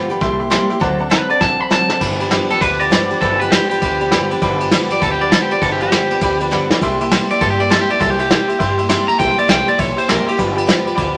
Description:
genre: rockabilly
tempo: 200 BPM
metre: 4/4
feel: swing 62% on 8ths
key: G mixolydian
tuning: A4 = 440 Hz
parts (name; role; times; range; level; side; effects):
- honky-tonk upright piano; accompaniment; 0.0-11.2 s; D5 to C6; -25 LUFS; equal; none
- picked steel-string acoustic guitar; accompaniment; 0.0-11.2 s; G2 to A4; -22 LUFS; equal; none
- upright bass; bass; 0.1-11.2 s; G1 to G2; -28 LUFS; equal; none
- vintage brush drum kit; drums; 0.1-11.1 s; crash cymbal, hi-hat, kick drum, ride cymbal, snare drum; -20 LUFS; equal; none
- electric guitar at the edge of break-up; melody; 1.1-10.4 s; G4 to B5; -19 LUFS; equal; none
room: moderate studio reverb, RT60 0.7 s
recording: none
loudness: -16 LUFS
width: mono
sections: 0.0-2.0 A section; 2.0-11.2 A section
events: drum fill 1.4-2.0, 6.5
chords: 0.2 C7; 0.8 D7; 2.0 G7; 6.8 C7; 10.4 G7

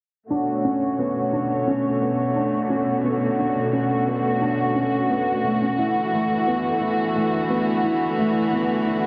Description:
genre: drum and bass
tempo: 175 BPM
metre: 4/4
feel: straight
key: B minor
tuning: A4 = 439 Hz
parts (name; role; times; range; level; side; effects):
- warm studio string section; sustained chords; 0.3-9.1 s; B2 to C#5; -24 LUFS; equal; low-pass filter
- felt-muted upright piano; arpeggios; 0.3-9.1 s; A3 to E4; -26 LUFS; equal; low-pass filter, dub echo
room: moderate lush hall reverb, RT60 2.5 s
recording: dense, heavily limited modern master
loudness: -22 LUFS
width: mono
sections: 0.3-9.1 A section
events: filter sweep on string section 0.3-9.1; filter sweep on felt piano 0.3-9.1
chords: 0.3 Bm9; 5.8 E7sus4

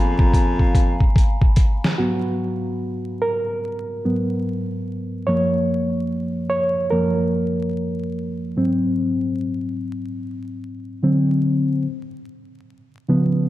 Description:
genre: lo-fi hip hop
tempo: 73 BPM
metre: 4/4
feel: swing 63% on 16ths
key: G# dorian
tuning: A4 = 440 Hz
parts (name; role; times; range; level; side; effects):
- reed electric piano; accompaniment; 0.0-13.5 s; F#2 to C#5; -20 LUFS; equal; cassette tape, low-pass filter
- warbly tape-like pad; sustained chords; 0.0-1.9 s; E#5 to B5; -29 LUFS; left 2 dB; chorus, built-in reverb, low-pass filter
- warm baritone saxophone; bass; 0.0-1.1 s; E#2; -23 LUFS; left 1 dB; none
- dusty soul sampler-style drum kit; drums; 0.2-2.0 s; hi-hat, kick drum, snare drum; -16 LUFS; equal; none
room: moderate plate reverb, RT60 2.1 s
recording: dreamy mix soaked in reverb, vinyl crackle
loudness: -18 LUFS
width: side -15 dB against mid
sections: 0.0-2.0 A section; 2.0-13.5 B section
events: drum fill 0.3-2.0; reed electric piano solo 2.0-13.5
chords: 0.0 G#m69; 2.0 G#m9; 5.3 F#maj7; 8.6 G#7; 11.0 D7; 11.8 C#7

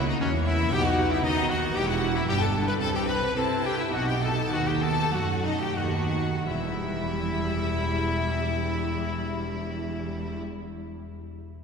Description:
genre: classical, baroque-style concerto movement with solo episodes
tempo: 86-118 BPM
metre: 4/4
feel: straight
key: E minor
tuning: A4 = 440 Hz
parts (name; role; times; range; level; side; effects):
- clear trumpet; melody; 0.0-10.4 s; C#4 to B4; -31 LUFS; left 1 dB; none
- rich chamber violin section; melody; 0.0-10.4 s; C#5 to B5; -34 LUFS; left 5 dB; none
- clear chamber violin section; second line; 0.0-10.4 s; C#4 to B4; -33 LUFS; left 2 dB; none
- lute; accompaniment; 0.0-10.7 s; E2 to E5; -38 LUFS; equal; none
- rich chamber viola section; accompaniment; 0.0-10.4 s; G3 to E4; -35 LUFS; right 1 dB; none
- clear chamber double bass section; bass; 0.0-10.4 s; E1 to C3; -31 LUFS; right 1 dB; none
- rich studio cello section; bass; 0.0-10.4 s; E2 to C4; -30 LUFS; right 1 dB; none
room: wet cathedral reverb, RT60 4.1 s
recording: recorded in a church or concert hall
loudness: -24 LUFS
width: side -6 dB against mid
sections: 0.0-6.5 A section; 6.5-11.6 B section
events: slowing down 0.7-6.5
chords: 0.0 A#dim/C#; 0.7 B; 1.8 Em; 2.8 C; 3.9 B7; 6.5 Em

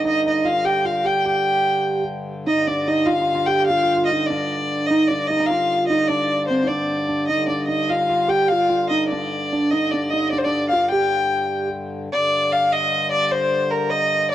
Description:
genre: medieval dance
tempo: 100 BPM (dotted quarters)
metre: 6/8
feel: straight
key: unclear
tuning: A4 = 440 Hz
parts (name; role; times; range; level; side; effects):
- dark fiddle; melody; 0.0-14.3 s; Bb4 to G5; -20 LUFS; left 1 dB; tape echo
- mellow tine electric piano; second line; 0.0-11.7 s; C4 to G4; -22 LUFS; right 2 dB; phaser
- pedal harmonium; drone; 0.0-14.3 s; G2 to D3; -29 LUFS; left 2 dB; none
room: light reverb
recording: dry, gritty hardware recording, cassette tape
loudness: -18 LUFS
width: side -12 dB against mid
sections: 0.0-2.5 A section; 2.5-12.1 B section; 12.1-14.3 C section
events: none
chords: none

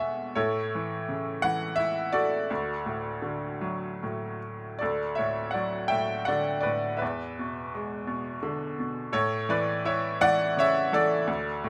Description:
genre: classical, lyrical solo piano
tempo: 73-86 BPM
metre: 3/4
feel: rubato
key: D major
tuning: A4 = 440 Hz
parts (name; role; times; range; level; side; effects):
- bright upright piano; solo; 0.0-11.7 s; D2 to G#5; -28 LUFS; equal; none
room: light reverb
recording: none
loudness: -29 LUFS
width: mono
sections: 0.0-4.8 A section; 4.8-11.7 B section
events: upright piano fill 0.0-0.4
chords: 0.4 A; 2.5 D; 4.8 Dadd9; 7.0 E7; 9.1 A

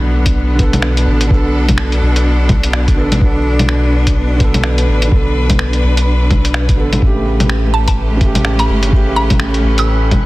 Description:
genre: future garage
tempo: 126 BPM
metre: 4/4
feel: swing 60% on 16ths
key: B minor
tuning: A4 = 440 Hz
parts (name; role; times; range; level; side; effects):
- felt-muted upright piano; accompaniment; 0.0-10.3 s; C#3 to A4; -20 LUFS; right 2 dB; sidechain pumping, tape echo
- bright studio string section; sustained chords; 0.0-10.3 s; A2 to B4; -20 LUFS; left 1 dB; sidechain pumping
- soft dub sub bass; bass; 0.0-10.3 s; G1 to B1; -14 LUFS; equal; tube saturation, sidechain pumping
- impact; sound effects; 0.0-1.3 s; none; barely audible; none; none
- electronic kick drum; drums; 0.3-10.2 s; none; -14 LUFS; equal; studio reverb
- lo-fi sampler-style drum kit; drums; 0.3-10.2 s; bongos, finger snaps, hi-hat; -18 LUFS; left 1 dB; studio reverb, soft clipping on snare
- drifting glass-harmonics texture; texture; 7.7-10.3 s; B4; -28 LUFS; right 2 dB; chorus, built-in reverb
- mallet-like synth pluck; melody; 7.7-10.3 s; A5 to E6; -20 LUFS; right 1 dB; chorus, tape echo
room: digital ambience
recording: dense, heavily limited modern master, vinyl crackle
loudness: -11 LUFS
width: side -19 dB against mid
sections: 0.0-10.3 A section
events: impact 0.0-1.3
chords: 0.0 Bm7; 7.0 A7

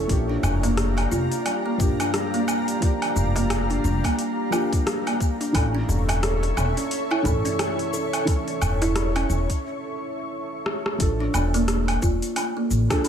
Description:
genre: organic downtempo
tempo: 88 BPM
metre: 4/4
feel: swing 59% on 16ths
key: unclear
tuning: A4 = 440 Hz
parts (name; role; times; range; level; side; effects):
- felt-muted upright piano; accompaniment; 0.0-13.1 s; E3 to A4; -31 LUFS; right 1 dB; sidechain pumping, ping-pong delay
- ethereal airy pad; sustained chords; 0.0-11.0 s; G4 to C#6; -31 LUFS; left 2 dB; ensemble chorus, built-in reverb, sidechain pumping
- kalimba; arpeggios; 0.0-13.1 s; G3 to A4; -27 LUFS; right 1 dB; ping-pong delay
- upright bass; bass; 0.0-12.8 s; E1 to Bb1; -24 LUFS; left 1 dB; none
- deep house drum kit; drums; 0.1-13.1 s; hi-hat, rim click, shaker, woodblock; -28 LUFS; equal; overdrive
- electronic kick drum; drums; 0.1-13.0 s; none; -23 LUFS; left 1 dB; none
- darbuka; percussion; 0.4-9.6 s; none; -32 LUFS; equal; none
room: light reverb, small room ambience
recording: none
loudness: -21 LUFS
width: side -8 dB against mid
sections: 0.0-11.0 A section; 11.0-13.1 B section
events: break 9.6-11.0; drum fill 10.7-11.0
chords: 0.1 Bb6; 5.5 A; 11.0 Bbmaj7

